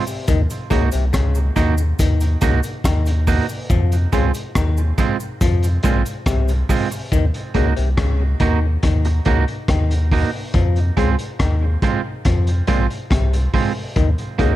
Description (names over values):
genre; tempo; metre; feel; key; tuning
dub reggae; 70 BPM; 4/4; straight; Eb dorian; A4 = 440 Hz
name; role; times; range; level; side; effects
electric guitar at the edge of break-up; accompaniment; 0.0-14.6 s; Ab3 to Gb4; -24 LUFS; right 7 dB; dub echo
cabasa; percussion; 0.1-7.3 s; none; -38 LUFS; right 6 dB; none
overdriven clav; riff; 0.3-14.5 s; Bb2 to F3; -27 LUFS; left 9 dB; phaser, dub echo
warm sub bass; bass; 0.3-14.6 s; Bb1 to F2; -18 LUFS; equal; none
crunchy breakbeat drum kit; drums; 0.3-14.6 s; hi-hat, kick drum, rim click; -21 LUFS; equal; none
room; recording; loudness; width
small room ambience; none; -16 LUFS; side -14 dB against mid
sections
0.0-14.6 A section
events
part muted 7.1-14.6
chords
0.3 Ebm; 3.7 Fm; 7.1 Ebm; 10.5 Fm; 14.0 Ebm